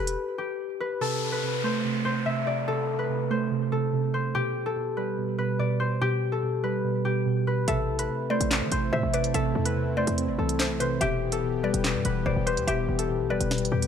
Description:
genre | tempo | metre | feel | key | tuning
hip hop, drill | 144 BPM | 4/4 | half-time | A minor | A4 = 438 Hz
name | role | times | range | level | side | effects
concert harp | melody | 0.0-13.9 s | G4 to E5 | -29 LUFS | left 5 dB | none
short 808-style bass | bass | 0.0-0.2, 7.7-13.9 s | E1 to E3 | -31 LUFS | equal | none
drill drum kit | drums | 0.1-0.2, 7.7-13.9 s | handclaps, hi-hat, snare drum | -30 LUFS | right 1 dB | vintage 12-bit sampler grit
muted felt-like synth keys | accompaniment | 1.0-13.9 s | B2 to C4 | -28 LUFS | right 3 dB | chorus, phaser
downlifter | sound effects | 1.0-4.3 s | none | -35 LUFS | left 1 dB | none
mallet-like synth pluck | second line | 7.7-13.9 s | B4 to E5 | -33 LUFS | left 3 dB | chorus, tape echo
warm analog pad | sustained chords | 7.7-13.9 s | E3 to G4 | -36 LUFS | right 3 dB | chorus
room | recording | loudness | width
light reverb, digital ambience | none | -24 LUFS | side -8 dB against mid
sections
0.0-1.0 A section; 1.0-13.9 B section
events
break 0.2-1.0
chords
0.0 Em; 1.0 Am; 4.3 Am11/B; 7.7 Am; 11.0 Em

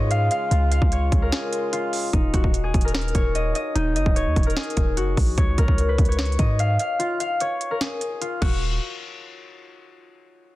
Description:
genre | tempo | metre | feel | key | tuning
hip hop, trap | 148 BPM | 4/4 | half-time | Eb minor | A4 = 439 Hz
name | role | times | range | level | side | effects
concert harp | melody | 0.0-8.6 s | Eb4 to F5 | -25 LUFS | left 2 dB | low-pass filter, digital delay
pedal harmonium | sustained chords | 0.0-2.1 s | Db3 to F4 | -32 LUFS | right 4 dB | none
warm 808-style bass | bass | 0.0-8.8 s | Db1 to Ab2 | -22 LUFS | equal | none
trap drum kit | drums | 0.1-8.5 s | crash cymbal, hi-hat, kick drum, snare drum | -22 LUFS | equal | none
room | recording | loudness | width
little or no reverb | dense, heavily limited modern master | -20 LUFS | side -17 dB against mid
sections
0.0-2.1 A section; 2.1-8.6 B section; 8.6-10.2 C section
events
break 1.3-2.1, 7.0-8.6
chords
0.0 Db; 2.1 Ebm7; 5.4 Db5; 8.4 Ebm; 8.6 N.C.

